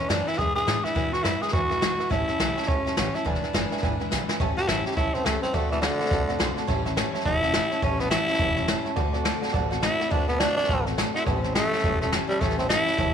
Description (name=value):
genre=rockabilly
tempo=209 BPM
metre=4/4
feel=swing 61% on 8ths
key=A mixolydian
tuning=A4 = 436 Hz
part: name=growling tenor saxophone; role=melody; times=0.0-13.1 s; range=D3 to G#4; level=-26 LUFS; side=equal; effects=none
part: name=picked steel-string acoustic guitar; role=accompaniment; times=0.0-13.1 s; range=E2 to F#4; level=-32 LUFS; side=left 11 dB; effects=none
part: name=warm upright piano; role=accompaniment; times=0.0-13.1 s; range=B4 to C6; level=-32 LUFS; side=right 13 dB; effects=none
part: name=upright bass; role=bass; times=0.1-13.1 s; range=E1 to A2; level=-31 LUFS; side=equal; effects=none
part: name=jazz brush drum kit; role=drums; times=0.1-13.1 s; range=hi-hat, kick drum, snare drum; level=-27 LUFS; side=equal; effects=none
room=light reverb, studio ambience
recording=1960s-style stereo with parts hard left and right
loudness=-22 LUFS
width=side -8 dB against mid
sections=0.0-4.4 A section; 4.4-13.1 B section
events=drum fill 4.1; tenor saxophone solo 4.4-13.1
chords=0.0 E7; 2.1 A7; 3.3 E7; 4.4 A7; 5.5 D7; 6.7 A7; 9.0 D7; 11.3 A7